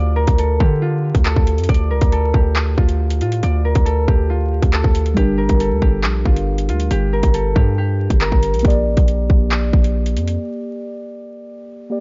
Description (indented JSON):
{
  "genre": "hip hop, drill",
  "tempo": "138 BPM",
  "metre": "4/4",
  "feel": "half-time",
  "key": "D minor",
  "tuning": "A4 = 445 Hz",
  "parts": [
    { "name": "concert harp", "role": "melody", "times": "0.0-10.3 s", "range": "F4 to D5", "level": "-25 LUFS", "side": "equal", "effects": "low-pass filter, digital delay" },
    { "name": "hard-hitting 808-style bass", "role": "bass", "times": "0.0-10.4 s", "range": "G1 to D3", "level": "-20 LUFS", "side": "equal", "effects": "none" },
    { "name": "drill drum kit", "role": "drums", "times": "0.3-10.4 s", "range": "handclaps, hi-hat, kick drum", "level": "-19 LUFS", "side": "equal", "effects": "none" },
    { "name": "muted felt-like synth keys", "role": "accompaniment", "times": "5.1-12.0 s", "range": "G3 to D5", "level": "-26 LUFS", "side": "equal", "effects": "chorus, low-pass filter" }
  ],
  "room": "little or no reverb",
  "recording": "dark, warm production, vinyl crackle, nothing above 7.5 kHz",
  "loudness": "-17 LUFS",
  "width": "mono",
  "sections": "0.0-12.0 A section",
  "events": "break 0.0-5.2, 10.4-12.0",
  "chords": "0.0 Dm; 5.2 Gm; 8.6 Bb6"
}